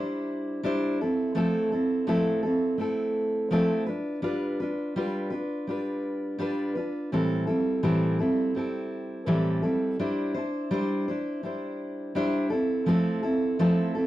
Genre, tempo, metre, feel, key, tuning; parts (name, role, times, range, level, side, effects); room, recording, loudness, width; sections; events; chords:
pop; 83 BPM; 4/4; swing 60% on 16ths; C major; A4 = 440 Hz
fingerpicked steel-string acoustic guitar; solo; 0.0-14.1 s; A2 to C5; -25 LUFS; equal; slapback echo
moderate booth ambience, RT60 0.2 s; dry, close 1970s-style studio recording; -25 LUFS; side -15 dB against mid
0.0-14.1 A section
0.0 Cadd9/G; 1.0 Fmaj7; 3.9 G7; 7.1 Am7; 10.0 Cadd9/G; 12.5 Fmaj7